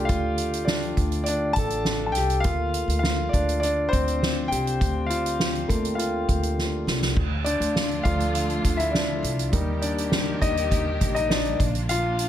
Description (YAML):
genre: piano-driven pop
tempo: 102 BPM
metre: 4/4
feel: straight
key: unclear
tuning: A4 = 439 Hz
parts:
  - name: clear concert grand piano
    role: accompaniment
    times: 0.0-12.3 s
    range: F3 to A5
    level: -25 LUFS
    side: left 2 dB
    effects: none
  - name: upright bass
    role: bass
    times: 0.0-12.3 s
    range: A1 to Eb2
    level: -28 LUFS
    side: equal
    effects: none
  - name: soft-mallet drum kit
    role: drums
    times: 0.1-12.3 s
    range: crash cymbal, hi-hat, kick drum, snare drum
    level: -26 LUFS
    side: right 1 dB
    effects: none
  - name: warm symphonic string section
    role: sustained chords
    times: 7.2-12.3 s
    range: D3 to G4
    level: -33 LUFS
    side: right 2 dB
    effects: none
room: light reverb, small room ambience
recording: none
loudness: -22 LUFS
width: side -11 dB against mid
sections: 0.0-7.2 A section; 7.2-12.3 B section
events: grand piano solo 0.0-7.2, 7.2-12.3; drum fill 6.6-7.2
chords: 0.0 Dm; 2.5 Gm7; 7.2 Dm; 9.5 Eb; 11.6 Bb